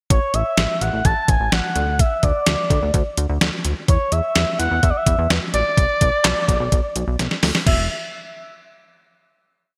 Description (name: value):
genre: synth-pop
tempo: 127 BPM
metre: 4/4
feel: straight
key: unclear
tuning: A4 = 440 Hz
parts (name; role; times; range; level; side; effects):
- expressive synth lead; melody; 0.1-7.9 s; C#5 to A5; -24 LUFS; equal; chorus, delay
- chorused synth bass; bass; 0.1-7.9 s; E1 to E2; -24 LUFS; equal; none
- detuned 8-bit digital drum machine; drums; 0.1-7.8 s; crash cymbal, handclaps, hi-hat, kick drum, snare drum; -22 LUFS; equal; overdrive, gated reverb
room: moderate lush hall reverb, RT60 1.9 s, digital ambience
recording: bright 1980s-style digital production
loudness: -19 LUFS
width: mono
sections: 0.1-7.7 pre-chorus; 7.7-9.6 final note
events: drum fill 7.2-7.7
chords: 0.1 A5; 1.8 N.C.; 5.8 Bm; 7.7 N.C.